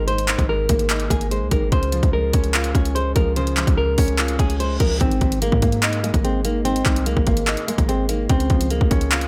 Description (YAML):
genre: hip hop, trap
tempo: 146 BPM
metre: 4/4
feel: half-time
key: Ab major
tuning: A4 = 439 Hz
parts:
  - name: nylon-string guitar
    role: melody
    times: 0.0-9.3 s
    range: Ab3 to C5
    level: -27 LUFS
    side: equal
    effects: low-pass filter, tape echo
  - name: dark baby grand piano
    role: accompaniment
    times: 0.0-9.3 s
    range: Ab2 to F4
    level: -28 LUFS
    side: equal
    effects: low-pass filter
  - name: warm 808-style bass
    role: bass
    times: 0.0-9.3 s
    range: Ab1 to Ab2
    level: -25 LUFS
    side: equal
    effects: none
  - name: trap drum kit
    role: drums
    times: 0.1-9.3 s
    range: handclaps, hi-hat, kick drum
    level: -23 LUFS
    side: equal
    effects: none
  - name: reverse cymbal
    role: sound effects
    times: 4.4-5.0 s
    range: none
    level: -34 LUFS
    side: equal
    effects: none
room: digital ambience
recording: none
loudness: -20 LUFS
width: mono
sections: 0.0-5.0 A section; 5.0-9.3 B section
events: reverse cymbal 4.4-5.0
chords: 0.0 Absus2; 1.7 Db; 5.0 Absus2; 8.3 Db